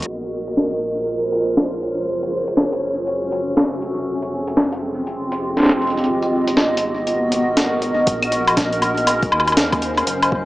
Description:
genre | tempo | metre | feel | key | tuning
IDM | 120 BPM | 4/4 | swing 62% on 16ths | unclear | A4 = 439 Hz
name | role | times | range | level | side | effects
granular cloud pad | sustained chords | 0.0-10.4 s | Cb4 to Eb5 | -20 LUFS | equal | built-in reverb, vintage 12-bit sampler grit, sidechain pumping
dark detuned saw bass | bass | 0.0-10.4 s | F1 to Eb2 | -33 LUFS | equal | none
jungle sampler-style drum kit | drums | 0.0-10.3 s | hi-hat, snare drum, woodblock | -19 LUFS | equal | overdrive, analog delay
electronic kick drum | drums | 8.1-10.4 s | none | -24 LUFS | equal | overdrive
room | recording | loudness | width
wet spring reverb, RT60 1.9 s, digital ambience | low-pass filter, small speaker sound | -17 LUFS | side -17 dB against mid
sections
0.1-8.1 A section; 8.1-10.4 B section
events
filter sweep on ambient pad 0.1-8.1; filter sweep 0.1-8.1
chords
0.1 Bbm9; 2.1 Gbm9; 3.8 Fm9; 6.1 Abm9; 8.1 Bbm9

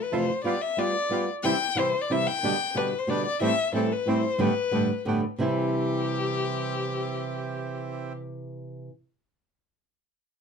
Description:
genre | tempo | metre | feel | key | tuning
tango | 183 BPM | 3/4 | rubato | C major | A4 = 440 Hz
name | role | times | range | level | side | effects
rich violin | second line | 0.0-8.1 s | G4 to G5 | -28 LUFS | left 5 dB | none
flamenco guitar | accompaniment | 0.1-8.9 s | F2 to G4 | -27 LUFS | right 1 dB | none
bandoneon | stabs | 0.1-8.1 s | A3 to A4 | -34 LUFS | right 6 dB | none
room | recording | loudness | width
moderate studio ambience, RT60 0.5 s | dark, warm production | -24 LUFS | side -6 dB against mid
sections
0.0-5.4 A section; 5.4-7.4 B section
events
violin solo 0.0-5.4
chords
0.4 G7; 1.4 C; 2.4 G/B; 3.4 Am7; 4.4 Gadd9; 5.4 C

